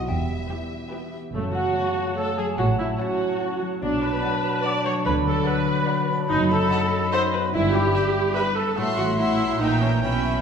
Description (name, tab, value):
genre	cinematic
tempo	145 BPM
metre	3/4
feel	straight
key	F# minor, E minor from 6.3 s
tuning	A4 = 440 Hz
part	rich studio violin section	melody	0.0-10.4 s	E5 to C6	-40 LUFS	left 1 dB	none
part	xylophone with soft rubber mallets	melody	0.0-10.4 s	A4 to D6	-33 LUFS	left 1 dB	none
part	dark French horn section	sustained chords	0.0-0.9 s	G3	-37 LUFS	left 1 dB	none
part	concert harp	arpeggios	0.0-10.4 s	F#2 to E5	-28 LUFS	left 4 dB	none
part	clear studio cello section	bass	0.1-10.4 s	E2 to D3	-30 LUFS	right 2 dB	none
part	rich studio double bass section	bass	0.1-10.4 s	E1 to D2	-28 LUFS	right 3 dB	none
part	rich studio violin section	second line	0.5-10.4 s	G4 to G5	-34 LUFS	left 3 dB	none
part	rich studio viola section	accompaniment	0.5-10.4 s	A3 to D5	-25 LUFS	right 1 dB	none
part	bright concert flute	second line	1.3-10.4 s	A5 to C6	-31 LUFS	left 1 dB	none
part	mellow cor anglais	second line	1.3-10.4 s	A3 to D5	-32 LUFS	right 1 dB	none
part	warm clarinet	second line	1.3-10.4 s	C#5 to G5	-36 LUFS	right 4 dB	none
part	clear bassoon	accompaniment	1.4-10.4 s	C#3 to G3	-32 LUFS	right 1 dB	none
room	wet recital hall reverb, RT60 1.3 s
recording	recorded in a church or concert hall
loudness	-20 LUFS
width	side -7 dB against mid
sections	0.0-1.3 A section; 1.3-10.4 B section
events	none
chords	0.1 Em; 1.3 F#m; 2.6 F#m/A; 3.8 Bm7; 5.1 Bm/D; 6.3 B7/F#; 7.5 Em/G; 8.8 F#m7b5/A; 9.6 A#dim7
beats	| 0.08 0.50 0.92 | 1.34 1.76 2.17 | 2.59 3.00 3.41 | 3.83 4.24 4.65 | 5.06 5.47 5.89 | 6.30 6.71 7.13 | 7.54 7.95 8.37 | 8.78 9.19 9.61 | 10.03